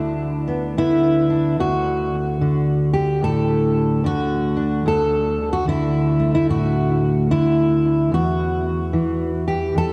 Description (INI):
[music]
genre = folk, solo fingerstyle acoustic guitar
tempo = 73 BPM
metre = 4/4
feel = swing 63% on 8ths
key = D major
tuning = A4 = 440 Hz
[part]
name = fingerpicked steel-string acoustic guitar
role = solo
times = 0.0-9.9 s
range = D2 to A4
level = -20 LUFS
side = equal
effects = subtle chorus, analog delay
[sound]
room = wet lush hall reverb, RT60 2.8 s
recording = dreamy mix soaked in reverb, cassette tape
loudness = -20 LUFS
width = mono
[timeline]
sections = 0.0-1.6 A section; 1.6-9.9 B section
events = none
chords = 0.0 Bmadd11/D; 1.6 D; 8.1 Emadd9